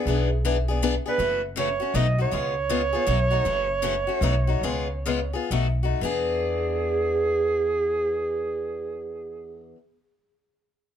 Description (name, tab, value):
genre	acoustic string swing (jazz manouche)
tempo	112-160 BPM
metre	3/4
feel	swing 63% on 8ths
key	E mixolydian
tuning	A4 = 441 Hz
part	warm clarinet	melody	0.0-9.7 s	G#4 to D#5	-26 LUFS	right 4 dB	plate reverb
part	picked steel-string acoustic guitar	accompaniment	0.0-9.8 s	B2 to G#4	-28 LUFS	left 6 dB	none
part	upright bass	bass	0.1-9.7 s	F#1 to E2	-27 LUFS	equal	none
room	moderate club reverb, RT60 0.7 s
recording	none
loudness	-22 LUFS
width	side -9 dB against mid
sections	0.0-1.2 A section; 1.2-6.0 B section; 6.0-9.2 C section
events	slowing down 3.4-6.0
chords	0.0 E7; 1.2 F#m7; 1.9 B7; 2.3 C#7; 3.1 B7; 3.4 F#m7; 4.2 B7; 4.6 C#7; 5.5 B7; 6.0 E7